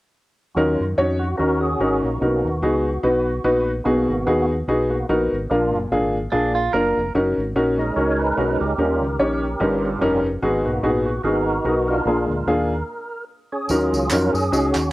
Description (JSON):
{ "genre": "uptempo gospel", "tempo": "146 BPM", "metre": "4/4", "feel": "swing 56% on 8ths", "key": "Eb minor", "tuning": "A4 = 442 Hz", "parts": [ { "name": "percussive tonewheel organ", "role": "sustained chords", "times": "0.5-14.9 s", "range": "Gb3 to Db5", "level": "-24 LUFS", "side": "right 1 dB", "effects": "slow rotary speaker, overdrive, chorus vibrato, cassette tape" }, { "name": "warm upright piano", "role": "accompaniment", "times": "0.6-14.8 s", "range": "G2 to Db5", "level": "-20 LUFS", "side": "left 1 dB", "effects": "cassette tape" }, { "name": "fingered electric bass", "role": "bass", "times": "0.6-14.9 s", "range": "F1 to Gb2", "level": "-26 LUFS", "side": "equal", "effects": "none" }, { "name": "clean electric guitar", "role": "second line", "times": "6.3-7.1 s", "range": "D4 to Bb4", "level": "-23 LUFS", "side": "right 4 dB", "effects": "cassette tape" }, { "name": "tambourine and handclaps", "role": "percussion", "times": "13.7-14.8 s", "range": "none", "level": "-28 LUFS", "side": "right 2 dB", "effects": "none" } ], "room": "moderate studio reverb, RT60 0.5 s", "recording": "home recording on cassette", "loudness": "-18 LUFS", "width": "side -18 dB against mid", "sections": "0.6-13.7 A section; 13.7-14.9 B section", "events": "tonewheel organ solo 0.6-13.7, 13.7-14.9; stop 12.9-13.7", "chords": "0.6 Ebm7; 2.2 Bmaj7; 3.9 Abm7; 5.5 Bb; 7.1 Gb6; 8.8 Eb7; 9.6 Eb7/G; 10.4 Abm7; 12.1 Bb7; 13.7 Ebm7", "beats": "| 0.57 0.98 1.39 1.80 | 2.21 2.63 3.04 3.45 | 3.86 4.27 4.68 5.09 | 5.50 5.91 6.32 6.73 | 7.14 7.55 7.96 8.37 | 8.78 9.19 9.60 10.01 | 10.42 10.83 11.24 11.65 | 12.06 12.47 12.88 13.29 | 13.70 14.10 14.51 14.92" }